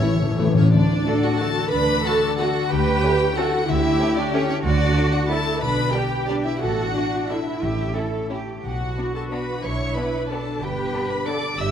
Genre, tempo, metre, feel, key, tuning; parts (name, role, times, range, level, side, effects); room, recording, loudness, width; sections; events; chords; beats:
classical; 164-199 BPM; 3/4; rubato; D major; A4 = 440 Hz
warm chamber violin section; melody; 0.0-11.7 s; C#5 to E6; -28 LUFS; left 5 dB
clear clarinet; second line; 0.0-0.6 s; barely audible
rich chamber violin section; second line; 0.0-11.3 s; G3 to F#4; -34 LUFS; left 3 dB
small flute group; second line; 0.0-0.6 s; C#5; -39 LUFS; left 1 dB
warm oboe; second line; 0.0-0.5 s; E5; -39 LUFS; right 3 dB
mellow bassoon; accompaniment; 0.0-0.5 s; E3; -37 LUFS; right 2 dB
warm studio viola section; accompaniment; 0.0-11.7 s; A3 to E5; -25 LUFS; right 2 dB
dark French horn section; sustained chords; 0.0-0.5 s; A3 to E4; -30 LUFS; left 4 dB
mellow trombone section; sustained chords; 0.0-0.5 s; A2 to E3; -32 LUFS; right 1 dB
concert harp; arpeggios; 0.0-11.7 s; G2 to D5; -27 LUFS; left 6 dB
timpani; percussion; 0.0-1.2, 7.6-8.1 s; A2 to D3; -22 LUFS; left 1 dB
dark chamber double bass section; bass; 0.7-11.7 s; G1 to D2; -27 LUFS; right 3 dB
warm chamber cello section; bass; 1.1-11.7 s; D4 to B4; -28 LUFS; right 3 dB
wet concert hall reverb, RT60 1.9 s; -19 LUFS; side -9 dB against mid
0.7-11.7 A section
timpani fill 0.0-0.7
0.0 A; 0.7 D; 2.7 A7/D; 4.6 D; 5.6 G/B; 6.6 Asus4; 7.6 A; 8.6 Bm; 10.6 G
0.03 0.39 | 0.73 1.06 1.40 | 1.72 2.04 2.39 | 2.71 3.03 3.37 | 3.68 4.00 4.33 | 4.65 4.97 5.30 | 5.61 5.93 6.28 | 6.61 6.94 7.29 | 7.62 7.96 8.31 | 8.64 8.98 9.32 | 9.64 9.96 10.30 | 10.61 10.93 11.26 | 11.58